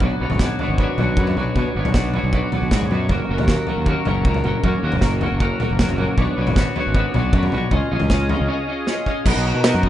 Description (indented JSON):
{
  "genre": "indie rock",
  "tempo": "156 BPM",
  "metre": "4/4",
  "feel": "straight",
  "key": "unclear",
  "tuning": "A4 = 439 Hz",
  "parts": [
    { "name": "twelve-string electric guitar", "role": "riff", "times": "0.0-9.9 s", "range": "B2 to D#5", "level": "-22 LUFS", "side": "equal", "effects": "double-tracked left and right" },
    { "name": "fuzz fingered electric bass", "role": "bass", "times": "0.0-9.9 s", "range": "F#1 to B2", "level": "-21 LUFS", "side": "equal", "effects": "overdrive" },
    { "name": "loose indie drum kit", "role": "drums", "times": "0.0-9.9 s", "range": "crash cymbal, kick drum, ride cymbal, snare drum, toms", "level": "-21 LUFS", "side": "equal", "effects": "none" },
    { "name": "chorused pulse-width pad", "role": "sustained chords", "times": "9.3-9.9 s", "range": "D#5 to A#5", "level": "-26 LUFS", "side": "left 1 dB", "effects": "none" }
  ],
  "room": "little or no reverb",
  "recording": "rough home demo mix, nothing above 10.7 kHz",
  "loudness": "-17 LUFS",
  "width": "side -12 dB against mid",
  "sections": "0.0-9.3 A section",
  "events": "break 8.5-9.3; drum fill 8.9-9.3",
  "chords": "0.0 Bmadd9; 3.1 F#; 6.2 Bmadd9; 7.7 C#add9; 9.3 Bmaj7"
}